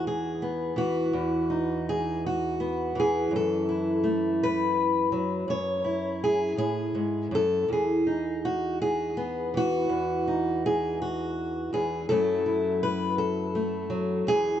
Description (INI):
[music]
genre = folk, solo fingerstyle acoustic guitar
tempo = 55 BPM (dotted quarters)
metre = 6/8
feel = rubato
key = E major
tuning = A4 = 440 Hz
[part]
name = fingerpicked steel-string acoustic guitar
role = solo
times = 0.0-14.6 s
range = E2 to C#5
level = -24 LUFS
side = equal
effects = tape echo
[sound]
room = moderate studio ambience, RT60 0.5 s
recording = dark, warm production, nothing above 7.9 kHz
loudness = -24 LUFS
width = side -10 dB against mid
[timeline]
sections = 0.0-14.6 A section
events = none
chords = 0.0 Emaj7; 3.3 F#m7; 7.7 Emaj7; 12.1 F#m7